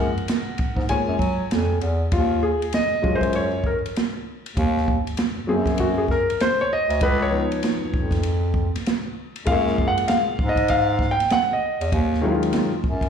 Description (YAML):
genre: hip hop, jazz-hop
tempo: 98 BPM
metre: 4/4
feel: swing 63% on 16ths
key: Eb minor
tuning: A4 = 440 Hz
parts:
  - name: dark concert grand piano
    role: accompaniment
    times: 0.0-12.7 s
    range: Eb3 to Ab5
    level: -22 LUFS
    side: left 1 dB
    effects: slapback echo
  - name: clear bass clarinet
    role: bass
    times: 0.0-13.1 s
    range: Db2 to Gb3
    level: -23 LUFS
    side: equal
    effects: none
  - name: open jazz drum kit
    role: drums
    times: 0.2-13.1 s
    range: hi-hat, kick drum, ride cymbal, snare drum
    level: -25 LUFS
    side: right 1 dB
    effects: none
room: light reverb, small room ambience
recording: live gig heard through the venue's PA, club reverb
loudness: -19 LUFS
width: side -7 dB against mid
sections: 0.0-2.1 A section; 2.1-11.9 B section; 11.9-13.1 C section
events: grand piano solo 0.0-2.1, 2.1-11.9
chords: 0.0 Gbmaj9; 2.1 Ebm11; 4.6 D7b9b13 (rootless); 7.0 Db9; 9.5 Gbmaj9; 11.9 Ebm11